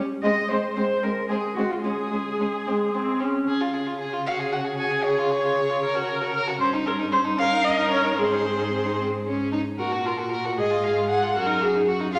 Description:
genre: quick classical-period movement for string quartet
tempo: 76 BPM (dotted quarters)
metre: 6/8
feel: straight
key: Db major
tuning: A4 = 440 Hz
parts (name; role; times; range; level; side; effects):
- rich violin; second line; 0.0-12.2 s; C4 to Bb4; -31 LUFS; equal; none
- warm viola; accompaniment; 0.0-12.2 s; Ab3 to C5; -27 LUFS; equal; none
- warm violin; melody; 0.2-12.2 s; F4 to Ab5; -29 LUFS; equal; none
- warm cello; bass; 0.2-12.2 s; F2 to Eb5; -33 LUFS; equal; none
room: wet recital hall reverb, RT60 1.6 s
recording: none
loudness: -24 LUFS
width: mono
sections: 0.0-3.5 A section; 3.5-12.2 B section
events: none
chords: 0.2 Ab; 1.8 N.C.; 2.7 Ab; 3.5 Db; 4.3 Dbsus4; 5.8 Gb/Db; 6.6 Eb7/G; 8.2 Ab; 9.8 Gb/Bb; 10.6 Fm/Ab; 11.4 Ebm/Gb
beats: | 0.24 1.03 | 1.84 2.66 | 3.47 4.27 | 5.05 5.83 | 6.61 7.39 | 8.18 8.99 | 9.79 10.58 | 11.37 12.14

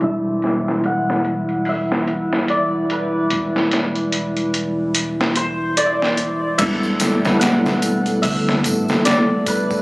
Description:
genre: trip hop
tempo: 73 BPM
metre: 4/4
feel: swing 58% on 16ths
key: E minor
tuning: A4 = 437 Hz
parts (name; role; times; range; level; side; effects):
- santur; melody; 0.0-9.8 s; B4 to F#5; -23 LUFS; equal; tape echo
- bell-like tine electric piano; accompaniment; 0.0-9.8 s; B2 to E4; -23 LUFS; equal; tremolo
- dark analog pad; sustained chords; 0.0-9.8 s; E3 to A4; -22 LUFS; equal; chorus
- upright bass; bass; 0.0-8.9 s; E1 to D2; -30 LUFS; equal; tube saturation
- trip hop sampler-style drum kit; drums; 0.0-9.8 s; crash cymbal, hi-hat, kick drum, snare drum; -20 LUFS; equal; overdrive, high-pass filter on hats, high-pass filter on snare, high-pass filter on cymbals, high-pass filter on kick
- tambourine; percussion; 6.6-9.8 s; none; -32 LUFS; right 1 dB; none
room: light reverb, small room ambience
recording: recorded on a phone in the room, club ambience, low-pass filter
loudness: -16 LUFS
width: side -22 dB against mid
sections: 0.0-6.6 A section; 6.6-9.8 B section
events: filter sweep 0.0-6.6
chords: 0.0 Em7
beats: | 0.01 0.84 1.66 2.48 | 3.30 4.12 4.95 5.77 | 6.59 7.41 8.23 9.05

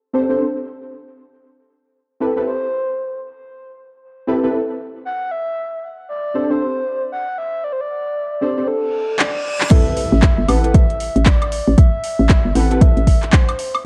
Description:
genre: deep house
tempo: 116 BPM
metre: 4/4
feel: swing 61% on 16ths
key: A dorian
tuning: A4 = 440 Hz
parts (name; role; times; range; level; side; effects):
- deep mellow chord stab; stabs; 0.1-12.9 s; C4 to C5; -23 LUFS; equal; ensemble chorus, sidechain pumping, tape echo
- breathy flute-like synth lead; melody; 2.5-13.7 s; A4 to F#5; -26 LUFS; equal; chorus, analog delay
- reverse cymbal and impact; sound effects; 8.9-11.8 s; none; -31 LUFS; equal; none
- deep house drum kit; drums; 9.2-13.8 s; crash cymbal, handclaps, hi-hat, woodblock; -24 LUFS; equal; overdrive
- electronic kick drum; drums; 9.7-13.5 s; none; -14 LUFS; equal; overdrive
- hollow knocking FM bass; bass; 10.1-13.5 s; G1 to A1; -19 LUFS; equal; sidechain pumping
room: light reverb, digital ambience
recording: dark, warm production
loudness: -17 LUFS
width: mono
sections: 0.0-9.7 A section; 9.7-13.9 B section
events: reverse cymbal 8.9-9.7; drum fill 9.2-9.7; drop 9.7-13.9; impact 9.7-11.8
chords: 0.0 D7sus4; 1.4 Am9; 5.3 D7sus4; 9.7 Am9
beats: 0.40 0.92 | 1.43 1.95 2.47 2.98 | 3.50 4.02 4.54 5.05 | 5.57 6.09 6.61 7.12 | 7.64 8.16 8.67 9.19 | 9.71 10.23 10.74 11.26 | 11.78 12.29 12.81 13.33

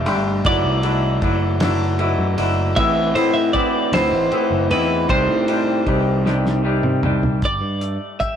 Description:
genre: indie rock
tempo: 52 BPM (dotted quarters)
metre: 6/8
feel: straight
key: G major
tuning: A4 = 441 Hz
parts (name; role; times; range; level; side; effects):
- twelve-string electric guitar; melody; 0.0-8.4 s; B4 to E5; -22 LUFS; right 1 dB; none
- electric guitar through a small old amp; riff; 0.0-7.4 s; C3 to D5; -24 LUFS; right 4 dB; none
- twangy electric guitar; riff; 0.0-8.4 s; A2 to G4; -23 LUFS; left 5 dB; none
- picked electric bass; bass; 0.0-8.0 s; F#1 to C3; -21 LUFS; equal; none
- cloth-damped thuddy drum kit; drums; 0.1-8.4 s; hi-hat, kick drum, ride cymbal, snare drum, toms; -24 LUFS; equal; none
room: moderate stone room reverb, RT60 1.2 s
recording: rough rehearsal-room recording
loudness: -16 LUFS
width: side -8 dB against mid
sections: 0.0-7.4 A section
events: drum fill 6.3-7.4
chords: 0.5 Dadd9/F#; 2.8 Amadd9; 5.1 Cmadd9; 7.4 Gsus2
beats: | 0.45 1.61 | 2.77 3.93 | 5.09 6.26 | 7.43

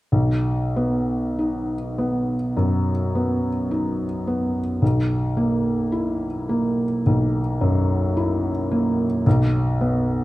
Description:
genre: classical, romantic nocturne for solo piano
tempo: 45-56 BPM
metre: 4/4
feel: rubato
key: B major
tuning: A4 = 440 Hz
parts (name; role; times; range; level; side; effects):
- felt-muted upright piano; solo; 0.1-10.2 s; B1 to E4; -19 LUFS; equal; none
room: moderate recital hall reverb, RT60 1.3 s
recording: none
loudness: -20 LUFS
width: side -17 dB against mid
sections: 0.1-10.2 A section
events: none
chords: 0.1 B; 4.8 F#7/B; 9.3 N.C.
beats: | 0.12 1.40 2.58 3.71 | 4.82 5.93 7.05 8.16 | 9.26

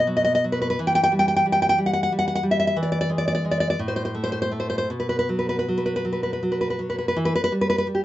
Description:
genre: romantic piece for solo classical guitar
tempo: 51-62 BPM (dotted quarters)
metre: 6/8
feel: rubato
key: E minor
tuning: A4 = 438 Hz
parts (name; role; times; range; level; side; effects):
- nylon-string guitar; solo; 0.0-8.0 s; A2 to G5; -20 LUFS; equal; none
room: light reverb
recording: nothing above 8.0 kHz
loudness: -20 LUFS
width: side -14 dB against mid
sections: 0.0-7.2 A section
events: none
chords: 0.0 B5; 0.8 Em; 2.8 E; 3.8 N.C.; 4.9 B5; 7.2 Em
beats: | 0.79 1.79 | 2.76 3.78 | 4.88 6.03 | 7.17

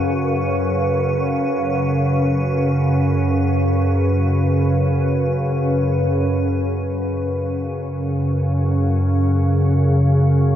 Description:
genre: dark ambient drone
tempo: free time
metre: none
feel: none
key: unclear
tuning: A4 = 442 Hz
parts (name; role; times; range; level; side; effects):
- organ-like drone; drone; 0.0-10.6 s; F#2 to C#3; -17 LUFS; equal; ensemble chorus, built-in reverb
- icy glass pad; texture; 0.0-6.1 s; B4; -26 LUFS; equal; chorus, built-in reverb
room: wet huge ambient reverb, RT60 8.3 s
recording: dark, warm production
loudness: -16 LUFS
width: side -10 dB against mid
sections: 0.0-6.1 A section; 6.1-10.6 A section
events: none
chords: 0.0 F#sus4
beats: free time

